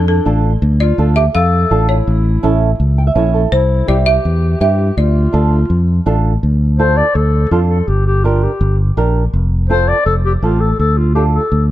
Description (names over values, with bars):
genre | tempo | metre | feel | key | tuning
latin | 165 BPM | 4/4 | straight | D minor | A4 = 440 Hz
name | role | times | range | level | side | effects
folk marimba with medium hard mallets | melody | 0.0-6.0 s | A4 to F5 | -18 LUFS | right 1 dB | none
breathy clarinet | second line | 0.0-11.7 s | D4 to D5 | -19 LUFS | left 2 dB | none
fingered electric bass | bass | 0.0-11.7 s | F1 to G2 | -13 LUFS | equal | none
flamenco guitar | accompaniment | 0.3-11.4 s | C4 to G5 | -19 LUFS | right 5 dB | none
room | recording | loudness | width
little or no reverb | none | -11 LUFS | side -14 dB against mid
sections
0.0-6.4 A section; 6.4-11.7 B section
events
nylon-string guitar fill 2.8-3.5; clarinet solo 6.4-11.7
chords
0.0 Dm; 2.1 A; 3.5 C; 5.0 Dm; 7.9 Gm; 9.3 F; 10.8 Dm